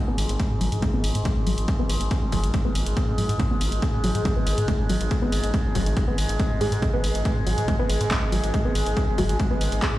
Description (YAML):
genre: driving peak-time techno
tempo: 140 BPM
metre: 4/4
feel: straight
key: unclear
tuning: A4 = 445 Hz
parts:
  - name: overtone-sweeping drone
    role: drone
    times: 0.0-10.0 s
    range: G#2 to G#3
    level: -32 LUFS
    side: left 1 dB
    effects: chorus, built-in reverb, sidechain pumping
  - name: deep dark ambient pad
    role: texture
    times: 0.0-10.0 s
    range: G#4 to G#5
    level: -32 LUFS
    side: equal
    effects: chorus, built-in reverb, sidechain pumping
  - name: tight sequenced synth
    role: riff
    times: 0.1-9.9 s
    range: F#3 to B3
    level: -30 LUFS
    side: equal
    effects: chorus, phaser, tube saturation, sidechain pumping, tape echo
  - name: gritty driven synth bass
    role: bass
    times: 0.1-10.0 s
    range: F#1 to G#2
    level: -26 LUFS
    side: equal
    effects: sidechain pumping
  - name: punchy analog drum machine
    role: drums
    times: 0.2-9.9 s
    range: handclaps, hi-hat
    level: -32 LUFS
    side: equal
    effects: sidechain pumping on hats
  - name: electronic kick drum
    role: drums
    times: 0.4-9.9 s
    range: none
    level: -25 LUFS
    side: equal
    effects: none
room: digital ambience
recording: played on a big sound system in a bare room, stone room reverb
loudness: -21 LUFS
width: side -15 dB against mid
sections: 0.0-10.0 A section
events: filter sweep on synth arpeggio sound 0.0-10.0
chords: 0.0 G#m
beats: 0.40 0.82 1.25 | 1.68 2.11 2.54 2.97 | 3.40 3.82 4.25 4.68 | 5.11 5.54 5.97 6.39 | 6.82 7.25 7.68 8.11 | 8.54 8.97 9.39 9.82